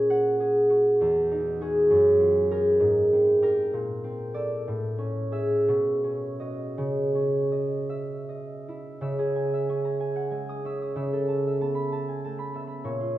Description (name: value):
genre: classical, solo harp piece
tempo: 51-68 BPM (dotted quarters)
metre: 6/8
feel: rubato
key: unclear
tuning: A4 = 440 Hz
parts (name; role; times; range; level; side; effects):
- concert harp; solo; 0.0-13.2 s; E2 to D#6; -23 LUFS; right 1 dB; none
room: wet recital hall reverb, RT60 1.4 s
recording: minimal, uncompressed stereo recording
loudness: -23 LUFS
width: side -15 dB against mid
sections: 0.0-9.1 A section; 9.1-13.2 A section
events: none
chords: 0.0 G#9sus4/A#; 1.0 Emaj9; 1.9 F#maj9; 2.8 G#maj9; 3.7 A#maj9; 4.7 Amaj7; 5.7 Badd9; 6.8 C#madd9; 11.0 B9sus4/C#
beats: 0.10 | 1.00 1.90 | 2.81 3.72 | 4.67 5.67 | 6.76 7.92 | 9.05 10.03 | 10.99 11.93 | 12.86